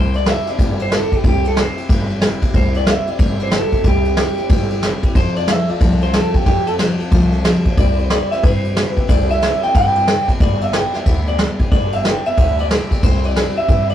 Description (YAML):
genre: rockabilly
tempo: 183 BPM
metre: 4/4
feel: swing 63% on 8ths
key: C major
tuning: A4 = 443 Hz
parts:
  - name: electric guitar through a small old amp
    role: melody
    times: 0.0-13.9 s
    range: G4 to G5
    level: -20 LUFS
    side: right 1 dB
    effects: none
  - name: picked steel-string acoustic guitar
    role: accompaniment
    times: 0.0-13.9 s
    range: G2 to A4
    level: -24 LUFS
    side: left 2 dB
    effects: none
  - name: upright bass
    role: bass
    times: 0.0-13.9 s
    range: G1 to G2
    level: -20 LUFS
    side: equal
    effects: none
  - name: vintage brush drum kit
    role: drums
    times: 0.1-13.9 s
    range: kick drum, ride cymbal, snare drum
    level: -16 LUFS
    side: equal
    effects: none
room: moderate small room reverb, RT60 0.5 s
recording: rough rehearsal-room recording, tube saturation, faint mains hum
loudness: -14 LUFS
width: side -11 dB against mid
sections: 0.0-13.9 A section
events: none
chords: 0.0 C; 5.2 F; 7.8 C; 10.4 G; 13.0 C